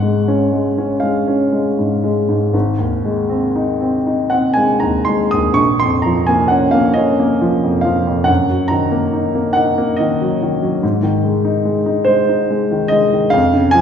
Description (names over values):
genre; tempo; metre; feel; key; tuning
classical, romantic nocturne for solo piano; 38-50 BPM (dotted quarters); 12/8; rubato; unclear; A4 = 440 Hz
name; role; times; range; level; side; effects
clear grand piano; solo; 0.0-13.8 s; Ab1 to Eb6; -13 LUFS; equal; none
room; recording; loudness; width
wet recital hall reverb, RT60 1.4 s; heard from further back in the room; -13 LUFS; side -8 dB against mid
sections
0.0-13.8 A section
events
none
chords
0.0 Db/Ab; 2.5 Ab; 5.6 Bbm; 8.3 Ebm/Gb; 10.8 Ab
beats
1.02 2.54 4.07 | 5.59 6.97 8.29 9.57 | 10.83 12.07 13.33